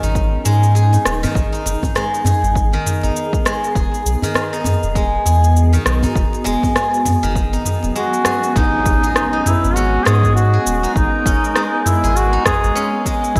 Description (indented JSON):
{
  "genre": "organic downtempo",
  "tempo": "100 BPM",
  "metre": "4/4",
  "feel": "swing 59% on 16ths",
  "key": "G# minor",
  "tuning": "A4 = 440 Hz",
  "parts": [
    { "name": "granular cloud pad", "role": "sustained chords", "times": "0.0-13.4 s", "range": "F#3 to D#5", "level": "-27 LUFS", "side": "equal", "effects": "built-in reverb, sidechain pumping" },
    { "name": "steel-string zither", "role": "arpeggios", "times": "0.0-13.4 s", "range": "D#3 to G#4", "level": "-23 LUFS", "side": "equal", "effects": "delay" },
    { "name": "warm sub bass", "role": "bass", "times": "0.0-13.4 s", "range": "D#1 to G#2", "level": "-18 LUFS", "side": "equal", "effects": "none" },
    { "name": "deep house drum kit", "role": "drums", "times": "0.0-13.4 s", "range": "rim click, shaker, toms", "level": "-23 LUFS", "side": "equal", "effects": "gated reverb" },
    { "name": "electronic kick drum", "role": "drums", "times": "0.2-13.4 s", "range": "none", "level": "-22 LUFS", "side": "equal", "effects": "none" },
    { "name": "djembe", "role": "percussion", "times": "0.2-8.4 s", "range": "none", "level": "-29 LUFS", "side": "equal", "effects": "none" },
    { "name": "warm duduk", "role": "melody", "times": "8.0-13.4 s", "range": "D#4 to G#4", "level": "-21 LUFS", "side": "equal", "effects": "delay" },
    { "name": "impact", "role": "sound effects", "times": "8.6-11.0 s", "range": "none", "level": "-29 LUFS", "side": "equal", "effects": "none" }
  ],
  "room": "moderate lush hall reverb, RT60 2.3 s",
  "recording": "bright 1980s-style digital production",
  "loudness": "-16 LUFS",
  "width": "mono",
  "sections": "0.0-8.6 A section; 8.6-13.4 B section",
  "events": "kick drops out 8.0-8.6; impact 8.6-11.0",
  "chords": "0.0 G#m; 3.8 Eadd9; 6.2 F#sus4; 8.6 G#madd9",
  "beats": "0.16 0.76 | 1.36 1.96 2.56 3.16 | 3.76 4.36 4.96 5.56 | 6.16 6.76 7.36 7.96 | 8.56 9.16 9.76 10.36 | 10.96 11.56 12.16 12.76 | 13.36"
}